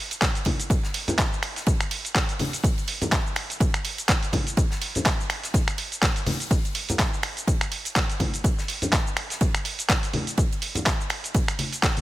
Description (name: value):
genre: house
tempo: 124 BPM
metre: 4/4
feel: swing 56% on 16ths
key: none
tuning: none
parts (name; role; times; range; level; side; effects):
- dusty soul sampler-style drum kit; drums; 0.1-12.0 s; cabasa, finger snaps, handclaps, hi-hat; -26 LUFS; equal; none
- huge arena drum kit; drums; 0.1-12.0 s; hi-hat, ride cymbal, snare drum; -35 LUFS; right 1 dB; high-pass filter on cymbals, high-pass filter on hats, high-pass filter on snare, high-pass filter on room
- electronic kick drum; drums; 0.2-11.9 s; none; -24 LUFS; equal; none
- congas; percussion; 0.5-12.0 s; none; -29 LUFS; left 1 dB; none
room: small room reverb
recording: none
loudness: -22 LUFS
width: side -16 dB against mid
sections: 0.0-12.0 A section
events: none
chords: none